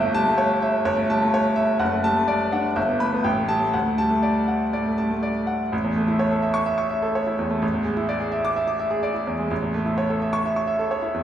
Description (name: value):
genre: classical, virtuoso piano study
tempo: 127 BPM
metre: 4/4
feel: rubato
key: D major, A major from 5.7 s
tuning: A4 = 439 Hz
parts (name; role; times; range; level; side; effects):
- clear baby grand piano; solo; 0.0-11.2 s; F#1 to D6; -20 LUFS; equal; none
room: wet recital hall reverb, RT60 1.3 s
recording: heard from further back in the room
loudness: -20 LUFS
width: side -10 dB against mid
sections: 0.0-5.7 A section; 5.7-11.2 B section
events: none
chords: 0.0 A7/G; 1.8 D/F#; 2.8 Em/G; 3.2 Gsus2/A; 3.7 D; 5.7 A; 7.6 E7/A; 9.5 A